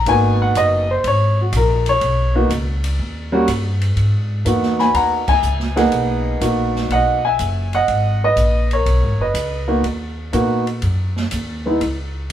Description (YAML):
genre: jazz piano trio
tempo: 122 BPM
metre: 4/4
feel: swing 69% on 8ths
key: G# minor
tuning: A4 = 437 Hz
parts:
  - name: warm baby grand piano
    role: melody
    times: 0.0-11.8 s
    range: G3 to B5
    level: -17 LUFS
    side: equal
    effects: none
  - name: upright bass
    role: bass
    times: 0.0-12.3 s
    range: F#1 to A#2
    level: -19 LUFS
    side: equal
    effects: none
  - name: open jazz drum kit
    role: drums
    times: 0.1-12.3 s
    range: crash cymbal, hi-hat, kick drum, ride cymbal, snare drum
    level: -28 LUFS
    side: right 2 dB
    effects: none
room: moderate large studio reverb, RT60 1.0 s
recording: band playing live in one room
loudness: -15 LUFS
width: side -10 dB against mid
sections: 0.0-4.0 A section; 4.0-12.3 B section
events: grand piano solo 0.0-4.0; band accent 5.2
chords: 0.1 G#m9; 3.0 D#; 4.0 G#m9; 11.8 N.C.